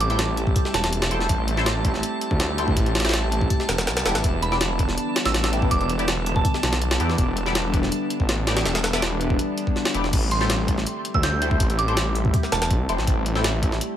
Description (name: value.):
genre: drum and bass, jungle.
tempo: 163 BPM.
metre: 4/4.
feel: straight.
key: A minor.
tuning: A4 = 440 Hz.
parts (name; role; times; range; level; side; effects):
soft synth bell; melody; 0.0-0.9, 4.4-6.6, 10.3-12.7 s; A5 to G6; -29 LUFS; right 3 dB; chorus, dub echo.
warbly tape-like pad; sustained chords; 0.0-14.0 s; D3 to G4; -28 LUFS; left 1 dB; chorus, built-in reverb.
band-passed chord stab; stabs; 0.0-13.4 s; B3 to G5; -31 LUFS; left 2 dB; phaser, analog chorus, dub echo.
detuned saw bass; bass; 0.0-13.8 s; E1 to E2; -25 LUFS; equal; none.
jungle sampler-style drum kit; drums; 0.0-13.9 s; crash cymbal, hi-hat, kick drum, snare drum; -23 LUFS; equal; none.
drifting glass-harmonics texture; texture; 0.0-10.1 s; A5; -34 LUFS; right 3 dB; chorus, built-in reverb.
room: light reverb.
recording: none.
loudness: -20 LUFS.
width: side -10 dB against mid.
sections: 0.0-10.1 A section; 10.1-14.0 A section.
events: drop 0.0-10.1, 10.1-14.0.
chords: 0.0 Em7; 10.1 Am7.